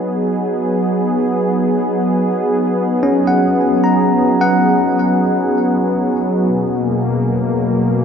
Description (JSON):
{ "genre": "ambient", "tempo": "78 BPM", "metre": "4/4", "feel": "straight", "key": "B major", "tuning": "A4 = 440 Hz", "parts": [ { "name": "warm analog pad", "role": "sustained chords", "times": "0.0-8.0 s", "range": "B2 to D#5", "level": "-15 LUFS", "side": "equal", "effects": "chorus" }, { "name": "bell-like tine electric piano", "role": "arpeggios", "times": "0.0-8.0 s", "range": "C#4 to A#5", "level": "-18 LUFS", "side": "left 1 dB", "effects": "fast stereo tremolo, ping-pong delay" } ], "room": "wet cathedral reverb, RT60 5.5 s", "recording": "none", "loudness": "-13 LUFS", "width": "side -7 dB against mid", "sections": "0.0-8.0 A section", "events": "fade-in on tine electric piano 0.0-8.0", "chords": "0.0 B6; 6.5 D#m/B (rootless)" }